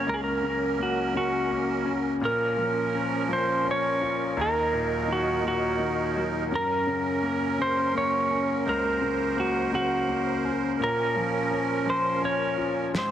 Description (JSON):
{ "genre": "six-eight pop ballad", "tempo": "56 BPM (dotted quarters)", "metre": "6/8", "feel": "straight", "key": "Bb minor", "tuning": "A4 = 440 Hz", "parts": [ { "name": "clean lap steel guitar", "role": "melody", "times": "0.0-13.1 s", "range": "Gb4 to Db5", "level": "-26 LUFS", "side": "right 1 dB", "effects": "tape echo" }, { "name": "clear concert grand piano", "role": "accompaniment", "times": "0.0-13.1 s", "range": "Db2 to F4", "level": "-29 LUFS", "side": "left 4 dB", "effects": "none" }, { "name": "musette accordion", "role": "sustained chords", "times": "0.0-13.1 s", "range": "Eb3 to C5", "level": "-30 LUFS", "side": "right 6 dB", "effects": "none" }, { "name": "snare drum", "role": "drums", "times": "12.9-13.1 s", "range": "none", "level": "-28 LUFS", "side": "equal", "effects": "none" } ], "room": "moderate lush hall reverb, RT60 1.9 s, small room ambience", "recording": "dense, heavily limited modern master", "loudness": "-24 LUFS", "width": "side -10 dB against mid", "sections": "0.0-13.1 A section", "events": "drum fill 12.9", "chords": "0.0 Gb; 2.2 Bbm; 4.4 Ebm; 6.5 Gb; 10.8 Bbm", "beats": "| 0.06 1.13 | 2.21 3.28 | 4.36 5.43 | 6.50 7.58 | 8.65 9.72 | 10.79 11.87 | 12.94" }